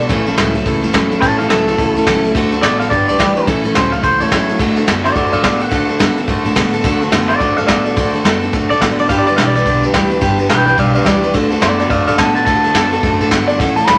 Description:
rockabilly; 213 BPM; 4/4; swing 60% on 8ths; D major; A4 = 440 Hz
electric guitar through a small old amp; melody; 0.0-14.0 s; F#4 to B5; -18 LUFS; equal
picked steel-string acoustic guitar; accompaniment; 0.0-14.0 s; A2 to B4; -20 LUFS; equal
electric guitar through a small old amp; riff; 0.0-14.0 s; G2 to B3; -23 LUFS; equal
upright bass; bass; 0.0-14.0 s; G1 to A2; -25 LUFS; equal
vintage brush drum kit; drums; 0.1-14.0 s; crash cymbal, kick drum, ride cymbal, snare drum; -20 LUFS; equal
moderate studio reverb, RT60 0.9 s; -14 LUFS; mono
0.0-4.6 A section; 4.6-14.0 B section
clean electric guitar solo 4.6-14.0
0.1 A; 2.3 D; 2.9 G; 3.5 A; 4.6 D; 9.1 G; 11.3 D

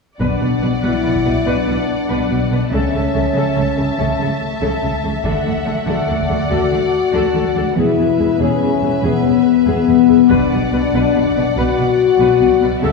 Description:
cinematic, epic orchestral film score; 95 BPM (dotted quarters); 12/8; straight; B dorian; A4 = 442 Hz
clear symphonic violin section; melody; 0.2-12.9 s; E5 to A5; -29 LUFS; left 2 dB
rich symphonic violin section; second line; 0.2-12.9 s; B4 to E5; -27 LUFS; left 3 dB
rich symphonic viola section; accompaniment; 0.2-12.9 s; G#4 to B4; -26 LUFS; right 1 dB
mellow French horn section; sustained chords; 0.2-12.9 s; A3 to A4; -16 LUFS; left 7 dB
rich symphonic cello section; bass; 0.2-12.9 s; E2 to D3; -21 LUFS; right 1 dB
rich symphonic double bass section; bass; 0.2-12.9 s; E1 to D2; -23 LUFS; right 1 dB
taiko ensemble; drums; 0.2-1.3, 5.2-6.4, 10.3-11.4 s; -28 LUFS; equal
wet scoring stage reverb, RT60 1.8 s; heard from further back in the room; -13 LUFS; side -3 dB against mid
0.2-12.9 A section
0.2 Bm; 2.7 A/C#; 5.2 D; 7.8 E; 10.3 Bm

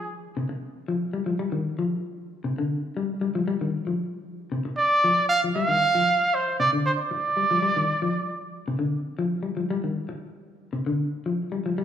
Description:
afrobeat; 116 BPM; 4/4; straight; A4 = 439 Hz
clear trumpet; melody; 0.0-0.1, 4.8-8.4 s; C5 to F5; -21 LUFS; right 2 dB; slapback echo
electric guitar at the edge of break-up; arpeggios; 0.4-11.8 s; C3 to G3; -27 LUFS; left 3 dB; slapback echo
moderate lush hall reverb, RT60 2.5 s; live gig heard through the venue's PA, club reverb; -23 LUFS; side -9 dB against mid
0.0-11.8 A section
0.0 Cmadd9 (rootless)

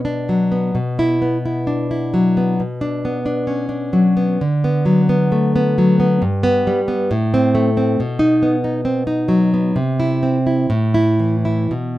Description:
romantic piece for solo classical guitar; 56-69 BPM; 2/4; rubato; B minor; A4 = 440 Hz
nylon-string guitar; solo; 0.0-12.0 s; G2 to E4; -15 LUFS; equal
moderate studio ambience, RT60 0.4 s; minimal, uncompressed stereo recording; -15 LUFS; side -15 dB against mid
0.0-12.0 A section
0.0 Bm; 0.8 Bmadd11; 2.6 Bm; 4.4 Bm/D; 6.2 G; 7.1 Am; 8.0 B; 9.8 C; 10.7 A5

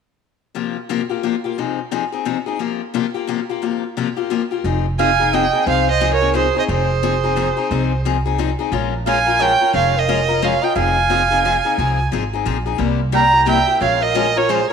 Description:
acoustic string swing (jazz manouche); 177 BPM; 3/4; swing 61% on 8ths; F minor; A4 = 440 Hz
picked steel-string acoustic guitar; accompaniment; 0.5-14.7 s; C3 to Bb4; -20 LUFS; left 11 dB
upright bass; bass; 4.6-14.6 s; F1 to C2; -22 LUFS; right 1 dB
rich violin; melody; 5.0-14.7 s; C5 to Bb5; -17 LUFS; right 3 dB
breathy clarinet; second line; 5.0-14.7 s; Ab4 to G5; -21 LUFS; right 11 dB
moderate plate reverb, RT60 2.4 s; 1960s-style stereo with parts hard left and right; -16 LUFS; side -6 dB against mid
0.6-4.6 A section; 4.6-14.7 B section
0.6 C7sus4; 1.6 Fm7/C; 2.6 C7sus4; 4.6 Fm7; 8.7 Bbm7; 10.8 Fm7; 12.8 C7; 13.8 Bbm7

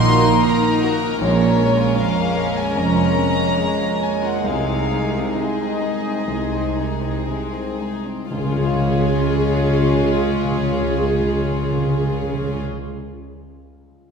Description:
cinematic; 57-80 BPM; 4/4; rubato; Db major; A4 = 442 Hz
warm studio violin section; melody; 0.0-12.6 s; Db5 to C6; -26 LUFS; left 2 dB
warm symphonic violin section; second line; 0.0-12.6 s; Ab3 to Bb4; -26 LUFS; left 3 dB
warm grand piano; accompaniment; 0.0-14.1 s; Bb1 to F5; -26 LUFS; equal
warm studio viola section; accompaniment; 0.0-12.6 s; Ab3 to Eb4; -26 LUFS; right 4 dB
warm French horn section; sustained chords; 0.0-12.6 s; Ab3 to F4; -25 LUFS; left 2 dB
concert harp; arpeggios; 0.0-13.0 s; Bb2 to Gb5; -32 LUFS; left 4 dB
dark symphonic double bass section; bass; 0.0-12.6 s; F1 to Db2; -25 LUFS; right 3 dB
warm symphonic cello section; bass; 0.0-12.6 s; F2 to Db3; -26 LUFS; right 4 dB
timpani; percussion; 8.3-12.6 s; Db3; -23 LUFS; left 1 dB
wet concert hall reverb, RT60 1.9 s; recorded in a church or concert hall; -17 LUFS; side -6 dB against mid
0.0-8.3 A section; 8.3-12.5 B section
slowing down 0.0-8.3
0.0 Ebm; 1.2 Bbm7; 4.4 Ab/C; 8.3 Db

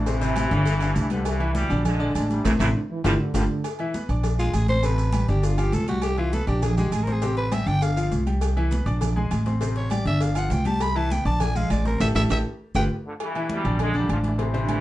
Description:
latin, salsa; 201 BPM; 4/4; straight; A4 = 440 Hz
brilliant trombone section; melody; 0.0-3.4, 13.1-14.8 s; F2 to Ab3; -29 LUFS; equal
upright bass; bass; 0.0-14.8 s; G1 to C2; -24 LUFS; equal
clear grand piano; accompaniment; 0.1-14.8 s; C3 to D6; -29 LUFS; left 2 dB
agogo bells and timbales; percussion; 0.1-14.8 s; -36 LUFS; right 7 dB
congas; percussion; 0.1-14.8 s; -29 LUFS; equal
cowbell; percussion; 0.1-14.8 s; -36 LUFS; left 6 dB
maracas; percussion; 0.1-12.8 s; -43 LUFS; right 4 dB
mellow trombone section; second line; 0.2-3.6, 14.5-14.8 s; G2 to E3; -29 LUFS; right 2 dB
growling soprano saxophone; melody; 4.4-12.8 s; F4 to B5; -28 LUFS; equal
moderate studio ambience, RT60 0.5 s; heard from further back in the room, nothing above 10.5 kHz; -21 LUFS; side -15 dB against mid
0.0-3.6 A section; 3.6-13.2 B section; 13.2-14.8 A section
band accent 2.4-3.6, 12.0-13.2; drum fill 2.7-3.6, 12.8-13.2; soprano saxophone solo 3.6-13.2
0.1 Am7; 0.7 G7; 1.3 Cmaj7; 1.9 Bb7; 2.4 Am; 3.0 G5; 3.6 Bmadd11; 4.2 Bb7; 4.8 Am7; 5.4 G5; 6.0 Cmaj7; 6.6 Bb7; 7.2 Am7; 7.8 G5; 8.4 Cmaj7; 9.0 Bb7; 9.6 Am7; 10.2 G5; 10.8 Cmaj7; 11.4 Bb7; 12.0 A5; 12.6 G7; 13.2 G6; 13.8 Bb7

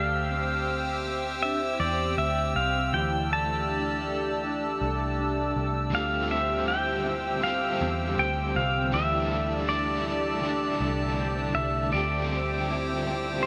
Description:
dream pop; 80 BPM; 4/4; straight; D minor; A4 = 440 Hz
pedal steel guitar; melody; 0.0-13.5 s; C5 to A5; -32 LUFS; equal; tape echo
hollow soft pad; sustained chords; 0.0-13.5 s; G4 to E6; -33 LUFS; equal; chorus
mellow electric guitar; arpeggios; 0.0-13.5 s; E3 to G4; -37 LUFS; equal; ensemble chorus, tape echo
vintage muted picked electric bass; bass; 0.0-13.5 s; C2 to E2; -34 LUFS; equal
crunchy overdriven guitar; accompaniment; 5.9-13.5 s; D3 to A4; -36 LUFS; equal; tremolo, subtle chorus
moderate shimmer reverb, RT60 5.6 s; -27 LUFS; mono
0.0-13.5 A section
0.0 Dm11; 8.9 A7sus4/D; 11.9 Dm11

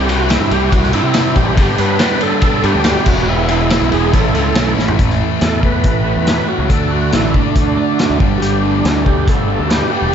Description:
classic rock; 140 BPM; 4/4; straight; A4 = 439 Hz
overdriven tonewheel organ; melody; 0.0-10.1 s; D4 to B4; -19 LUFS; right 2 dB; slow rotary speaker, chorus vibrato, slapback echo
tonewheel organ; sustained chords; 0.0-10.1 s; G3 to A4; -29 LUFS; left 1 dB
distorted electric guitar; riff; 0.0-10.1 s; G2 to E4; -21 LUFS; left 12 dB; overdrive, slapback echo
overdriven electric guitar; riff; 0.0-10.1 s; G2 to B4; -20 LUFS; right 11 dB; phaser, slapback echo
fuzz picked electric bass; bass; 0.0-10.1 s; E1 to C3; -18 LUFS; left 1 dB; overdrive
vintage drum kit; drums; 0.1-9.8 s; crash cymbal, hi-hat, kick drum, ride cymbal, snare drum, toms; -16 LUFS; equal
tambourine; percussion; 0.1-4.9 s; -37 LUFS; right 13 dB
moderate lush hall reverb, RT60 1.9 s, small room ambience; big arena sound, nothing above 7.7 kHz; -12 LUFS; side -8 dB against mid
0.0-5.0 A section; 5.0-10.1 B section
drum fill 4.8; tonewheel organ solo 5.0-10.1
0.0 C; 1.6 G; 3.1 E; 4.1 A; 6.7 D; 8.2 Gadd9

